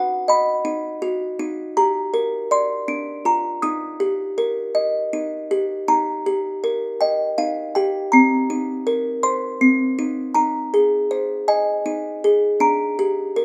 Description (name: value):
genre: children's music, lullaby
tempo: 54 BPM (dotted quarters)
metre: 6/8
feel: straight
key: Eb major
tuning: A4 = 440 Hz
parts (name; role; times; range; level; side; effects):
- music box; solo; 0.0-13.4 s; C4 to Eb6; -21 LUFS; equal; none
room: moderate recital hall reverb, RT60 1.4 s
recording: none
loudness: -21 LUFS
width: mono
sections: 0.0-5.9 A section; 5.9-13.4 B section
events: none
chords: 0.0 B; 1.4 Eb; 2.5 Dm7; 3.6 Eb; 8.1 Cm7; 10.4 Ab; 12.6 Bb6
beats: 0.28 | 1.39 2.51 | 3.63 4.75 | 5.89 7.02 | 8.13 9.24 | 10.35 11.48 | 12.61